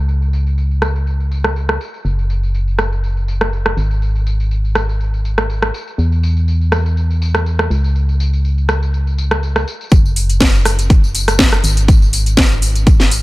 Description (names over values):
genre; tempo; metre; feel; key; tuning
piano house; 122 BPM; 4/4; swing 54% on 16ths; unclear; A4 = 437 Hz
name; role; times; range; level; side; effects
organ-like FM bass; bass; 0.0-13.2 s; F#1 to E2; -15 LUFS; equal; sidechain pumping
house drum kit; drums; 0.1-13.2 s; hi-hat, rim click, snare drum, tambourine; -18 LUFS; equal; low-pass filter on perc, low-pass filter on snare, low-pass filter on hats, low-pass filter on room
electronic kick drum; drums; 9.9-13.0 s; none; -10 LUFS; equal; none
room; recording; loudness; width
little or no reverb; none; -13 LUFS; side -19 dB against mid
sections
0.0-9.9 A section; 9.9-13.2 B section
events
drop 9.9-13.2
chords
none